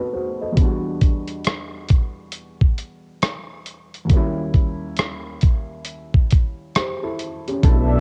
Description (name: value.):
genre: lo-fi hip hop.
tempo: 68 BPM.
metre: 4/4.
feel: swing 63% on 16ths.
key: unclear.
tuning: A4 = 441 Hz.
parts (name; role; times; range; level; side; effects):
dark upright piano; accompaniment; 0.0-8.0 s; D#2 to D#5; -29 LUFS; equal; low-pass filter, cassette tape.
dusty soul sampler-style drum kit; drums; 0.6-7.9 s; hi-hat, kick drum, rim click; -20 LUFS; equal; none.
lush unison pad; sustained chords; 7.6-8.0 s; B2 to E5; -25 LUFS; equal; chorus, phaser, low-pass filter, cassette tape.
smooth gliding synth bass; bass; 7.6-8.0 s; B1; -20 LUFS; equal; none.
room: little or no reverb.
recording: home recording on cassette.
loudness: -21 LUFS.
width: mono.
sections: 0.0-7.6 A section.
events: filter sweep on upright piano 0.0-7.6.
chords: 0.0 B7b9; 0.6 Em9; 4.1 D#7b9.